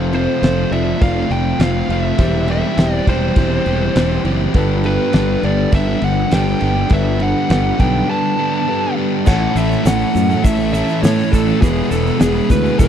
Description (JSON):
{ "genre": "classic rock", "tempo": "102 BPM", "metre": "4/4", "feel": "straight", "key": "unclear", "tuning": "A4 = 440 Hz", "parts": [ { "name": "dark grand piano", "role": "accompaniment", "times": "0.0-12.9 s", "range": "E4 to D5", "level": "-27 LUFS", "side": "left 3 dB", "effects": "none" }, { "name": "overdriven semi-hollow guitar", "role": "riff", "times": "0.0-12.9 s", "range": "E2 to A4", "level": "-21 LUFS", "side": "right 14 dB", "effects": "none" }, { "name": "sludgy distorted guitar", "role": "riff", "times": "0.0-12.9 s", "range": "E2 to A4", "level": "-21 LUFS", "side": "left 11 dB", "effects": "overdrive" }, { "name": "fuzz fingered electric bass", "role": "bass", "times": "0.0-12.9 s", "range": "E1 to A2", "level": "-19 LUFS", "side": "equal", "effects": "overdrive" }, { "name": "fuzz lead guitar", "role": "melody", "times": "0.1-12.9 s", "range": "G#4 to A5", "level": "-22 LUFS", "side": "right 1 dB", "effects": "distortion" }, { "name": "cloth-damped thuddy drum kit", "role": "drums", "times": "0.1-12.9 s", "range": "crash cymbal, hi-hat, kick drum, ride cymbal, snare drum", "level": "-15 LUFS", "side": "equal", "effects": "none" }, { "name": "string machine, full ensemble", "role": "sustained chords", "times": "9.3-12.9 s", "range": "G#3 to C#5", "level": "-27 LUFS", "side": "right 2 dB", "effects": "none" }, { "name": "thick fuzz guitar", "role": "riff", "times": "9.3-12.9 s", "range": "E2 to A3", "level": "-25 LUFS", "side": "right 1 dB", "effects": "distortion" }, { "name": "egg shaker", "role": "percussion", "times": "9.3-12.9 s", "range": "none", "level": "-37 LUFS", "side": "right 6 dB", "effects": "none" } ], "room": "small room reverb", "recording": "dry, close 1970s-style studio recording", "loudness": "-13 LUFS", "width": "side -9 dB against mid", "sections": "0.0-9.3 A section; 9.3-12.9 B section", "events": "break 8.1-9.3", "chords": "0.0 F; 2.2 C/E; 4.5 Gadd9; 9.3 A; 11.6 E" }